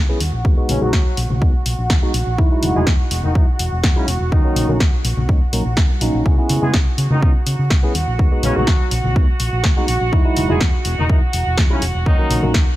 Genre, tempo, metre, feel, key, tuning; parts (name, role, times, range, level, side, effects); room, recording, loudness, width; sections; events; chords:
filtered disco house; 124 BPM; 4/4; straight; B major; A4 = 438 Hz
warm studio string section; sustained chords; 0.0-12.8 s; F#4 to F#5; -26 LUFS; right 2 dB; sidechain pumping, low-pass filter
hollow-body short-scale fingered electric bass; bass; 0.0-12.6 s; E1 to C#3; -21 LUFS; equal; sidechain pumping, low-pass filter
tine electric piano; accompaniment; 0.1-12.5 s; F#3 to G#4; -23 LUFS; right 1 dB; phaser, sidechain pumping, low-pass filter
tube shaker and congas; percussion; 0.1-12.8 s; -26 LUFS; left 2 dB; sidechain pumping on perc, low-pass filter on perc
punchy analog drum machine; drums; 0.2-12.6 s; hi-hat, snare drum; -23 LUFS; equal; sidechain pumping on hats, sidechain pumping on cymbals
electronic kick drum; drums; 0.4-12.6 s; -16 LUFS; equal
bright horn section; melody; 0.7-12.4 s; C#3 to G#4; -26 LUFS; left 1 dB; vintage 12-bit sampler grit, sidechain pumping, low-pass filter, tape echo
small room ambience; -14 LUFS; side -16 dB against mid
0.0-12.8 A section
filter sweep 0.0-12.8
0.2 B6; 2.4 Emaj9; 4.3 D#m7; 6.3 C#m7; 8.0 B6; 10.1 Emaj9; 12.1 D#m7